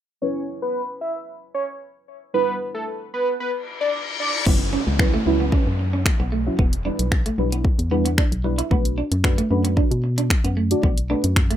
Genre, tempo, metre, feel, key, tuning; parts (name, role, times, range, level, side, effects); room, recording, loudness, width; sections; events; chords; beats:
dance-pop; 113 BPM; 4/4; straight; A4 = 440 Hz
fat analog lead; melody; 0.2-4.3 s; A4 to E5; -24 LUFS; right 1 dB; phaser, low-pass filter
deep mellow chord stab; accompaniment; 0.2-11.4 s; F#3 to D5; -25 LUFS; right 1 dB; chorus, phaser, sidechain pumping, low-pass filter
reverse cymbal and downlifter; sound effects; 3.6-8.7 s; -29 LUFS; left 3 dB
clean electric guitar; riff; 4.5-11.6 s; A3 to E4; -27 LUFS; right 4 dB; wide subtle chorus
organ-like FM bass; bass; 4.5-11.5 s; E1 to B2; -23 LUFS; equal; sidechain pumping
pop drum kit; drums; 4.5-11.6 s; crash cymbal, finger snaps, hi-hat, kick drum; -19 LUFS; equal
little or no reverb; rough home demo mix; -19 LUFS; side -11 dB against mid
0.2-4.5 A section; 4.5-11.6 B section
filter sweep 0.2-4.5; reverse cymbal 3.6-4.5
0.2 F#7sus4; 2.3 Em7; 4.5 F#7sus4; 6.6 Em7; 8.7 Bm7
| 0.22 0.75 1.28 1.81 | 2.34 2.87 3.40 3.93 | 4.46 4.99 5.53 6.06 | 6.59 7.12 7.65 8.18 | 8.71 9.24 9.77 10.30 | 10.84 11.37